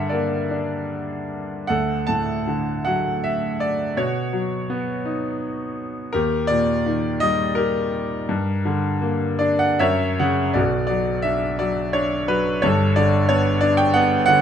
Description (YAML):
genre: classical, lyrical solo piano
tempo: 73-93 BPM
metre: 3/4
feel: rubato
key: B minor from 10.6 s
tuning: A4 = 440 Hz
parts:
  - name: bright grand piano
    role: solo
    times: 0.0-14.4 s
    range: G1 to A5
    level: -19 LUFS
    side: equal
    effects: none
room: light reverb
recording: close, detailed microphones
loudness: -19 LUFS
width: side -8 dB against mid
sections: 0.0-10.6 A section; 10.6-14.4 B section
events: grand piano fill 9.4-10.6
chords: 0.0 Gm; 1.7 D; 4.0 Badd9; 6.1 Eb; 8.3 Gm; 9.8 F#7; 10.6 Bm; 12.6 Gadd9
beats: 0.13 0.90 | 1.69 2.48 3.25 | 3.98 4.70 5.42 | 6.14 6.86 7.58 | 8.30 9.03 9.81 | 10.56 11.25 11.95 | 12.63 13.30 13.96